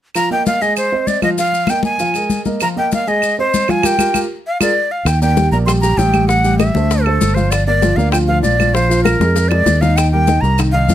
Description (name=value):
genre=Afro-Cuban jazz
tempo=195 BPM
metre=4/4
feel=straight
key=Eb major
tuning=A4 = 440 Hz
part: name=claves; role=percussion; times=0.1-10.7 s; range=none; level=-24 LUFS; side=right 10 dB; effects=none
part: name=breathy bright jazz flute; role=melody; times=0.2-10.9 s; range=A4 to C6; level=-17 LUFS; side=equal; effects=none
part: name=warm concert grand piano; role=accompaniment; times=0.2-10.9 s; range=Eb3 to Ab5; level=-20 LUFS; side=right 1 dB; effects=none
part: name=congas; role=percussion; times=0.2-10.9 s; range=none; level=-21 LUFS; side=left 4 dB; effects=none
part: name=maracas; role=percussion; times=0.2-10.9 s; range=none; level=-28 LUFS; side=left 4 dB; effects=none
part: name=fingered electric bass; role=bass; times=5.1-10.9 s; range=G1 to F2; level=-15 LUFS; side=equal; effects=none
part: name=bongos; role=percussion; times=5.1-10.9 s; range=none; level=-23 LUFS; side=left 7 dB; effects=none
room=light reverb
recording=close, detailed microphones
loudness=-12 LUFS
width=side -11 dB against mid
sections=0.1-5.1 A section; 5.1-10.9 B section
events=band accent 3.8-5.1; drum fill 9.2-10.0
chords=0.1 Ebsus2; 0.8 Ab; 1.4 Ebsus2; 3.2 Ab; 3.8 Fsus24; 4.5 Bb7; 5.1 Ebmaj7; 6.3 Am7; 6.9 D5; 7.5 Gm7; 8.7 Bb7; 10.0 Eb6